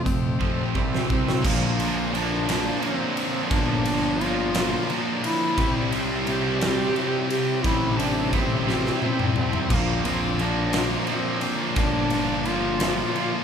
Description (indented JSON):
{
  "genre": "quiet-loud alternative rock",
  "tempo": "58 BPM (dotted quarters)",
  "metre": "6/8",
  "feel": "straight",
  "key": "unclear",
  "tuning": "A4 = 440 Hz",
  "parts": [
    { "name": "clear duduk", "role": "melody", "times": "0.0-13.4 s", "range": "Bb3 to G4", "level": "-28 LUFS", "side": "equal", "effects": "none" },
    { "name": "mellow tonewheel organ", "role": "sustained chords", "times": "0.0-13.4 s", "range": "F3 to D6", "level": "-40 LUFS", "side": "left 1 dB", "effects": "none" },
    { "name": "cranked stack guitar", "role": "riff", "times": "0.0-13.4 s", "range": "F2 to F4", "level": "-29 LUFS", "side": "right 7 dB", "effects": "overdrive, harmonic tremolo" },
    { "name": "thick fuzz guitar", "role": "riff", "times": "0.0-13.4 s", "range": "Bb2 to E4", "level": "-29 LUFS", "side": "left 5 dB", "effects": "distortion" },
    { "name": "fuzz picked electric bass", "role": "bass", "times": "0.0-13.0 s", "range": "G1 to F2", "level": "-29 LUFS", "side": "equal", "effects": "overdrive" },
    { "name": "big rock drum kit", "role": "drums", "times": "0.1-13.3 s", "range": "crash cymbal, hi-hat, kick drum, ride cymbal, snare drum, toms", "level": "-26 LUFS", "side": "left 1 dB", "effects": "none" },
    { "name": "heavy high-gain guitar", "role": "riff", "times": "1.4-13.4 s", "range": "Bb2 to C4", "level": "-30 LUFS", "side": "equal", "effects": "distortion" }
  ],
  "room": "light reverb",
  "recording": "band playing live in one room",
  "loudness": "-21 LUFS",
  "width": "side -7 dB against mid",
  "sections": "0.0-1.4 A section; 1.4-13.4 B section",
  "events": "drum fill 0.4-1.4, 8.7-9.7",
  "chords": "0.0 F; 0.8 C5; 1.4 Bb; 5.6 C; 9.7 Bb",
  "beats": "0.41 | 1.44 2.48 | 3.51 4.54 | 5.58 6.61 | 7.65 8.68 | 9.71 10.75 | 11.78 12.81"
}